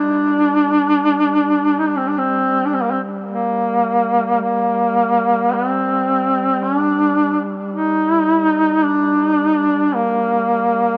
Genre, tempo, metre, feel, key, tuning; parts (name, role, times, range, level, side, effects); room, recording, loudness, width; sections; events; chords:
caucasian folk, Caucasian lament; 54 BPM; 3/4; rubato; G minor; A4 = 442 Hz
mellow duduk; melody; 0.0-11.0 s; Bb3 to Eb4; -17 LUFS; equal; tape echo
mellow duduk; drone; 0.0-11.0 s; G3; -28 LUFS; equal
moderate spring reverb, RT60 1.4 s; nothing above 7.5 kHz; -17 LUFS; mono
0.0-11.0 A section